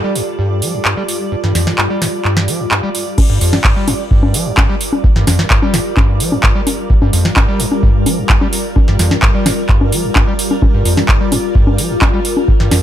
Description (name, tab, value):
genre	acid house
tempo	129 BPM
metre	4/4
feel	straight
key	G minor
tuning	A4 = 441 Hz
part	warm analog pad	sustained chords	0.0-3.2 s	G3 to G4	-30 LUFS	right 2 dB	none
part	overdriven acid bass	riff	0.0-12.8 s	F2 to G3	-18 LUFS	equal	lush chorus, sidechain pumping
part	granular cloud pad	texture	0.0-12.8 s	G3 to D5	-20 LUFS	equal	built-in reverb, sidechain pumping
part	booming analog drum machine	drums	0.2-12.8 s	congas, crash cymbal, handclaps, hi-hat, snare drum	-16 LUFS	equal	none
part	electronic kick drum	drums	3.2-12.6 s	none	-13 LUFS	equal	none
room	little or no reverb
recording	none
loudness	-11 LUFS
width	side -11 dB against mid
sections	0.0-3.2 A section; 3.2-12.8 B section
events	drop 3.2-12.8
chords	0.0 G7(no3); 3.2 Gm7